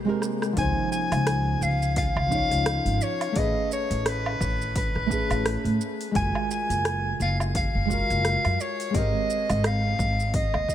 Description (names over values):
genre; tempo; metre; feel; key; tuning
sunset chillout; 86 BPM; 4/4; swing 58% on 16ths; Db major; A4 = 440 Hz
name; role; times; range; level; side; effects
nylon-string guitar; accompaniment; 0.0-10.7 s; F3 to Db5; -30 LUFS; moving between left 3 dB and right 5 dB; auto-pan, tape echo
ethereal airy pad; sustained chords; 0.0-0.5 s; C3 to G4; -37 LUFS; equal; ensemble chorus, built-in reverb
deep house drum kit; drums; 0.2-10.7 s; hi-hat, rim click, shaker, woodblock; -32 LUFS; right 1 dB; overdrive
warm soprano saxophone; melody; 0.6-10.7 s; B4 to Ab5; -27 LUFS; left 1 dB; ping-pong delay, shimmer reverb
upright bass; bass; 0.6-10.7 s; Gb1 to A2; -27 LUFS; equal; none
electronic kick drum; drums; 0.6-10.7 s; none; -30 LUFS; equal; overdrive
room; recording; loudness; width
light reverb, studio ambience; none; -22 LUFS; side -11 dB against mid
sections
0.6-10.7 A section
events
break 0.0-0.6; drum fill 0.2-0.6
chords
0.0 Abmaj9; 0.6 Dbmaj9; 3.4 Amaj9; 6.2 Gbmaj9; 8.9 Abmaj9